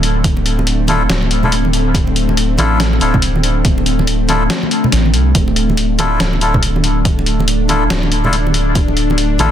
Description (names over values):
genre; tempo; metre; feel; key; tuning
deep dubstep; 141 BPM; 4/4; swing 62% on 16ths, half-time; D minor; A4 = 440 Hz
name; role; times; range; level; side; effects
bowed-like drone; sustained chords; 0.0-9.5 s; D3 to D4; -18 LUFS; left 1 dB; built-in reverb
soft dub sub bass; bass; 0.0-9.5 s; D1 to C2; -16 LUFS; equal; none
trip hop sampler-style drum kit; drums; 0.0-9.5 s; hi-hat, snare drum; -19 LUFS; left 1 dB; none
electronic kick drum; drums; 0.2-8.9 s; none; -16 LUFS; equal; none
congas; percussion; 0.2-9.5 s; none; -22 LUFS; right 3 dB; dub echo
melodica; stabs; 0.9-9.5 s; D4 to A4; -20 LUFS; left 3 dB; dub echo
room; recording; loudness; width
light reverb, digital ambience; dense, heavily limited modern master; -12 LUFS; side -10 dB against mid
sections
0.0-9.5 A section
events
none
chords
0.0 Dmadd9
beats
| 0.24 0.67 1.09 1.52 | 1.95 2.37 2.80 3.22 | 3.65 4.07 4.50 4.92 | 5.35 5.78 6.20 6.63 | 7.05 7.48 7.90 8.33 | 8.75 9.18